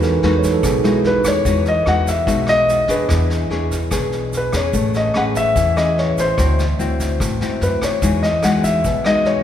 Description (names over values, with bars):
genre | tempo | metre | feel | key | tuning
bossa nova | 146 BPM | 4/4 | straight | E major | A4 = 440 Hz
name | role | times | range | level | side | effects
nylon-string guitar | accompaniment | 0.0-9.4 s | B2 to C#5 | -20 LUFS | left 2 dB | none
tine electric piano | accompaniment | 0.0-1.5 s | F#3 to C#5 | -21 LUFS | right 5 dB | none
upright bass | bass | 0.0-9.4 s | A1 to G#2 | -22 LUFS | equal | none
vintage brush drum kit | drums | 0.0-9.3 s | kick drum, rim click, snare drum | -26 LUFS | equal | none
egg shaker | percussion | 0.0-9.3 s | none | -35 LUFS | right 7 dB | none
warm grand piano | melody | 1.1-9.4 s | B4 to F#5 | -19 LUFS | left 2 dB | none
room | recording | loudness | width
moderate cathedral reverb, RT60 5.0 s | recorded in a church or concert hall | -15 LUFS | side -10 dB against mid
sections
0.0-1.5 A section; 1.5-9.4 B section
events
tine electric piano solo 0.0-1.5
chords
0.0 Emaj9; 3.1 E6; 4.7 Amaj9; 6.4 D9; 8.0 Emaj9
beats
0.23 0.64 1.04 | 1.46 1.86 2.27 2.68 | 3.10 3.50 3.92 4.33 | 4.74 5.15 5.56 5.97 | 6.38 6.79 7.20 7.61 | 8.02 8.43 8.84 9.25